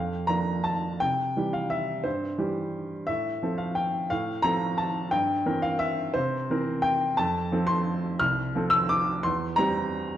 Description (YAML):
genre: classical, piano waltz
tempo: 175 BPM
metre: 3/4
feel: uneven beats, rubato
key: F major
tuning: A4 = 440 Hz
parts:
  - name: warm upright piano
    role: solo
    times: 0.0-10.2 s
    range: C2 to F6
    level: -24 LUFS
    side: equal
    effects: none
room: wet recital hall reverb, RT60 1.5 s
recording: nothing above 10.9 kHz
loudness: -24 LUFS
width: side -11 dB against mid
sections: 0.0-10.2 A section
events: none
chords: 0.0 Bb; 1.0 C; 3.1 F/A; 5.1 C7/G; 7.2 F; 9.3 C7/E